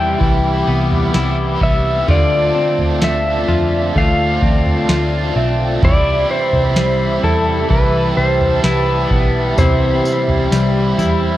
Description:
dream pop; 64 BPM; 4/4; straight; C major; A4 = 440 Hz
pedal steel guitar; melody; 0.0-11.4 s; A4 to G5; -19 LUFS; equal; digital delay
overdriven electric guitar; accompaniment; 0.0-11.4 s; C3 to F4; -24 LUFS; right 3 dB; tremolo, wide subtle chorus
warm analog pad; sustained chords; 0.0-11.4 s; F4 to D6; -22 LUFS; equal; chorus
semi-hollow electric guitar; arpeggios; 0.0-11.4 s; C3 to F4; -21 LUFS; left 3 dB; lush chorus, digital delay
vintage muted picked electric bass; bass; 0.0-11.4 s; B1 to F2; -19 LUFS; equal
worn celesta; texture; 0.0-9.6 s; D5 to G5; -30 LUFS; right 2 dB
booming analog drum machine; drums; 0.2-11.2 s; kick drum, snare drum, tambourine, toms; -18 LUFS; equal
moderate lush hall reverb, RT60 2.6 s; worn, warbling old tape, cassette tape, warbly pitch drift; -13 LUFS; side -14 dB against mid
0.0-11.4 A section
0.0 Cmaj7; 2.1 Dm7; 5.8 Cmaj7
0.20 1.14 | 2.08 3.02 3.95 4.89 | 5.83 6.77 7.70 8.64 | 9.58 10.52

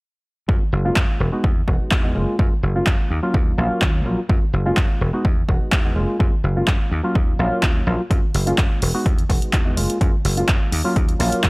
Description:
filtered disco house; 126 BPM; 4/4; straight; F# major; A4 = 441 Hz
bright reed electric piano; accompaniment; 0.5-11.5 s; F#3 to F#4; -24 LUFS; equal; phaser, sidechain pumping, low-pass filter
dry thumbed slap bass; bass; 0.5-11.5 s; E1 to F#2; -22 LUFS; equal; sidechain pumping, low-pass filter
electronic kick drum; drums; 0.5-11.5 s; -18 LUFS; equal; overdrive, studio reverb
punchy analog drum machine; drums; 1.0-11.5 s; handclaps, hi-hat; -25 LUFS; equal; overdrive, studio reverb, sidechain pumping on hats
little or no reverb; dry, gritty hardware recording; -17 LUFS; side -28 dB against mid
0.5-11.5 A section
0.5 F#maj9; 1.2 Emaj7; 2.2 F#maj9; 3.1 D#m9; 4.3 F#maj9; 5.0 Emaj7; 6.0 F#maj9; 6.9 D#m9; 8.1 F#maj9; 8.8 Emaj7; 9.8 F#maj9; 10.7 D#m9
| 0.49 0.96 1.44 1.92 | 2.39 2.87 3.35 3.82 | 4.30 4.77 5.25 5.73 | 6.20 6.68 7.15 7.63 | 8.11 8.58 9.06 9.54 | 10.01 10.49 10.96 11.44

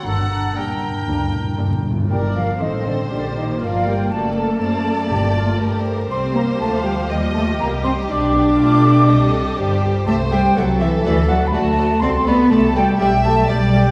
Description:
quick classical-period movement for symphony orchestra; 121 BPM; 4/4; straight; G minor; A4 = 443 Hz
warm chamber violin section; melody; 0.0-13.8 s; C5 to G5; -33 LUFS; equal
flute section; second line; 0.0-13.9 s; D5 to D6; -25 LUFS; equal
mellow clarinet; second line; 0.0-1.8 s; D4; -33 LUFS; equal
clear oboe; second line; 0.1-1.8 s; A4 to Bb4; -32 LUFS; equal
mellow French horn section; sustained chords; 0.1-13.9 s; D3 to D4; -24 LUFS; equal
rich chamber cello section; bass; 0.1-13.9 s; D2 to D4; -25 LUFS; equal
rich studio double bass section; bass; 0.1-13.9 s; F#1 to B2; -24 LUFS; equal
timpani; percussion; 0.1-5.8 s; G2; -26 LUFS; equal
warm chamber violin section; second line; 0.6-13.9 s; D4 to E5; -30 LUFS; equal
warm studio viola section; accompaniment; 0.6-13.8 s; F3 to Bb4; -28 LUFS; equal
wet recital hall reverb, RT60 1.7 s; heard from further back in the room, vinyl crackle; -18 LUFS; mono
0.0-2.1 A section; 2.1-13.9 B section
timpani fill 0.1-2.1
0.1 Gm; 4.1 D/F#; 5.1 Gm; 6.1 Cm; 8.1 G/B; 9.1 Cm; 10.1 Am7/C; 11.1 D; 12.0 D7/C; 13.0 G/B
| 0.06 0.57 1.08 1.59 | 2.11 2.61 3.10 3.61 | 4.11 4.60 5.10 5.60 | 6.10 6.60 7.10 7.60 | 8.09 8.59 9.08 9.57 | 10.06 10.56 11.05 11.54 | 12.03 12.51 13.00 13.50

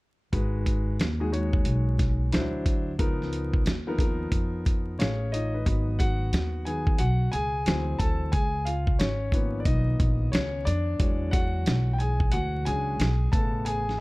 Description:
hip hop, jazz-hop; 90 BPM; 4/4; swing 63% on 16ths; A4 = 441 Hz
warm concert grand piano; accompaniment; 0.3-14.0 s; C#3 to A5; -30 LUFS; left 1 dB
upright bass; bass; 0.3-14.0 s; G#1 to E#2; -28 LUFS; equal
dusty soul sampler-style drum kit; drums; 0.3-13.9 s; hi-hat, kick drum, snare drum; -26 LUFS; equal
little or no reverb; dark, warm production, vinyl crackle; -24 LUFS; side -22 dB against mid
0.3-5.7 A section; 5.7-14.0 B section
grand piano solo 5.7-14.0
0.3 G#m7; 2.3 D9; 3.0 C#13; 5.7 G#m7; 7.7 D9; 8.3 C#13; 11.0 E13; 13.3 Amaj9
| 0.33 1.00 1.66 2.33 | 3.00 3.66 4.33 5.00 | 5.66 6.33 7.00 7.66 | 8.33 9.00 9.66 10.33 | 11.00 11.66 12.33 13.00 | 13.66

